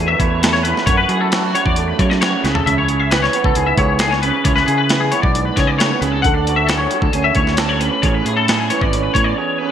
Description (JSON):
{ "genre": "math rock and midwest emo", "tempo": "134 BPM", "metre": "4/4", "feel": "straight", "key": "unclear", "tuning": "A4 = 444 Hz", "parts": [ { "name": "electric guitar through a small old amp", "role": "accompaniment", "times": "0.0-9.7 s", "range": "E2 to A4", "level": "-20 LUFS", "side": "right 8 dB", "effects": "none" }, { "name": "twangy electric guitar", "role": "arpeggios", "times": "0.0-9.7 s", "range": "F#4 to F#5", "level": "-18 LUFS", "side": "left 5 dB", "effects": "ensemble chorus" }, { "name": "fingered electric bass", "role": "bass", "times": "0.0-9.3 s", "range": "G#1 to F#3", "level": "-21 LUFS", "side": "equal", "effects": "none" }, { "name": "boom bap sampler-style drum kit", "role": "drums", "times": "0.2-9.3 s", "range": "hi-hat, kick drum, snare drum, toms", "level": "-19 LUFS", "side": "equal", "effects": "gated reverb" } ], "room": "moderate plate reverb, RT60 1.6 s", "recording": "bright 1980s-style digital production", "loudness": "-13 LUFS", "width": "side -9 dB against mid", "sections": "0.0-9.7 A section", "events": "drum fill 2.4; break 9.4-9.7", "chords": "0.0 E7sus4; 2.4 C#m7; 6.2 Dmaj7; 8.0 Amaj7", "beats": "0.41 | 0.86 1.31 1.76 2.21 | 2.65 3.10 3.55 4.00 | 4.45 4.89 5.34 5.79 | 6.24 6.69 7.13 7.58 | 8.03 8.48 8.92 9.37" }